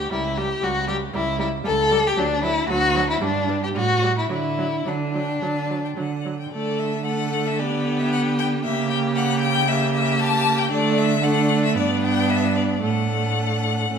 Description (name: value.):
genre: quick classical-period movement for string quartet.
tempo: 106-118 BPM.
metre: 4/4.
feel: rubato.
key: D major.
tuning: A4 = 439 Hz.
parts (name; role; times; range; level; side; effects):
rich violin; second line; 0.0-14.0 s; C#4 to A4; -24 LUFS; left 3 dB; none.
clear cello; bass; 0.0-14.0 s; C#2 to D3; -25 LUFS; right 5 dB; none.
rich violin; melody; 0.1-14.0 s; A4 to A5; -26 LUFS; left 7 dB; none.
clear viola; accompaniment; 0.1-14.0 s; F#3 to B3; -26 LUFS; right 3 dB; none.
room: wet recital hall reverb, RT60 1.6 s.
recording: none.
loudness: -19 LUFS.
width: side -7 dB against mid.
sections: 0.0-6.5 A section; 6.5-14.0 A section.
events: none.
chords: 0.1 C#dim7; 2.2 D; 3.2 G; 3.8 A7; 4.3 D; 6.5 D5; 7.6 Em7/D (rootless); 8.7 C#dim7; 10.7 D5; 11.8 G; 12.8 D/A.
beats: | 0.12 0.63 1.15 1.66 | 2.18 2.70 3.22 3.75 | 4.31 4.87 5.42 5.98 | 6.53 7.06 7.59 8.12 | 8.65 9.17 9.69 10.21 | 10.73 11.24 11.76 12.29 | 12.83 13.38 13.92.